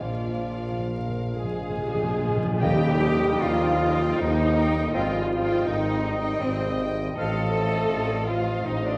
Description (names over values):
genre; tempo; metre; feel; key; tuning
classical, slow romantic movement for symphony orchestra; 62-83 BPM; 3/4; rubato; Eb major; A4 = 441 Hz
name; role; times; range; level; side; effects
rich chamber violin section; melody; 0.0-9.0 s; F5 to G5; -44 LUFS; equal; none
rich chamber violin section; second line; 0.0-9.0 s; Ab4 to G5; -42 LUFS; equal; none
mellow bassoon; accompaniment; 0.0-7.4 s; F3 to C4; -39 LUFS; equal; none
rich chamber viola section; accompaniment; 0.0-9.0 s; C4 to D5; -34 LUFS; equal; none
rich chamber double bass section; bass; 0.0-9.0 s; Ab1 to Eb2; -32 LUFS; equal; none
rich studio cello section; bass; 0.0-9.0 s; Bb2 to A4; -32 LUFS; equal; none
warm tuba; bass; 0.0-9.0 s; Ab1 to Eb2; -34 LUFS; equal; none
cymbal swell and tam-tam; percussion; 0.0-5.6 s; none; -38 LUFS; equal; none
timpani; percussion; 0.0-3.8 s; Bb2 to Eb3; -32 LUFS; equal; none
concert flute; second line; 1.4-9.0 s; C5 to A5; -36 LUFS; equal; none
clear French horn section; sustained chords; 1.4-9.0 s; C3 to A3; -35 LUFS; equal; none
clear clarinet; second line; 2.6-7.4 s; Eb5; -40 LUFS; equal; none
clear oboe; second line; 2.6-7.4 s; F5 to G5; -41 LUFS; equal; none
clear trombone section; sustained chords; 2.6-9.0 s; F3 to C4; -38 LUFS; equal; none
bright trumpet section; stabs; 2.6-9.0 s; Eb5; -36 LUFS; equal; none
room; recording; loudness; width
wet scoring stage reverb, RT60 2.0 s; worn, warbling old tape, cassette tape, vinyl crackle, warbly pitch drift; -25 LUFS; mono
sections
0.0-2.6 A section; 2.6-9.0 B section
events
timpani fill 0.0-2.6; band accent 2.6-3.4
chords
0.0 Bb; 2.6 Eb; 4.9 Abmaj7; 7.2 F7/A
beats
| 0.03 0.91 1.79 | 2.62 3.42 4.19 | 4.94 5.68 6.42 | 7.17 7.90 8.65